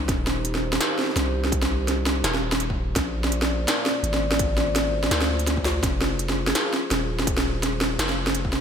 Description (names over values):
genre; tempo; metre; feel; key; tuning
half-time drum and bass; 167 BPM; 4/4; swing 56% on 16ths, half-time; F dorian; A4 = 440 Hz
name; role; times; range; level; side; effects
dark analog pad; sustained chords; 0.0-8.6 s; Bb3 to D5; -30 LUFS; equal; chorus, sidechain pumping
long sustained 808-style bass; bass; 0.0-8.6 s; Eb1 to D2; -27 LUFS; equal; none
electronic kick drum; drums; 0.1-8.5 s; none; -28 LUFS; equal; distortion
industrial drum kit; drums; 0.1-8.6 s; hi-hat, snare drum; -24 LUFS; equal; gated reverb
vibraphone with medium hard mallets; melody; 6.5-6.7 s; Ab4; -36 LUFS; left 3 dB; none
room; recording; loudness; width
moderate plate reverb, RT60 2.4 s; bright 1980s-style digital production; -21 LUFS; side -7 dB against mid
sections
0.0-8.6 A section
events
none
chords
0.1 Eb6; 3.0 Bbadd9; 5.8 Fm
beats
| 0.08 0.44 0.80 1.16 | 1.52 1.88 2.24 2.60 | 2.96 3.32 3.68 4.04 | 4.39 4.75 5.11 5.47 | 5.83 6.19 6.55 6.91 | 7.27 7.63 7.99 8.35